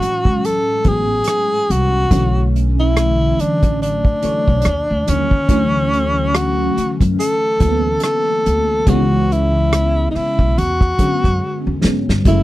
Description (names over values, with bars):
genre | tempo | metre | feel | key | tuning
R&B, neo-soul | 71 BPM | 4/4 | swing 59% on 16ths | F# minor | A4 = 440 Hz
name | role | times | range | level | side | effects
breathy tenor saxophone | melody | 0.0-12.4 s | C#4 to A4 | -18 LUFS | equal | none
FM electric piano with soft pad layer | accompaniment | 0.0-12.4 s | G#2 to C#5 | -20 LUFS | equal | chorus, phaser
upright bass | bass | 0.0-12.4 s | F#1 to G#2 | -18 LUFS | equal | none
unplugged drum kit | drums | 0.0-12.4 s | hi-hat, kick drum, rim click, snare drum | -17 LUFS | equal | none
room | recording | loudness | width
little or no reverb | dry, close 1970s-style studio recording | -14 LUFS | side -16 dB against mid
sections
0.0-12.2 A section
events
drum fill 11.4-12.2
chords
0.0 F#m9; 2.1 Bm11; 4.6 D#maj9; 5.5 Dmaj9; 8.9 C#m7; 10.6 E13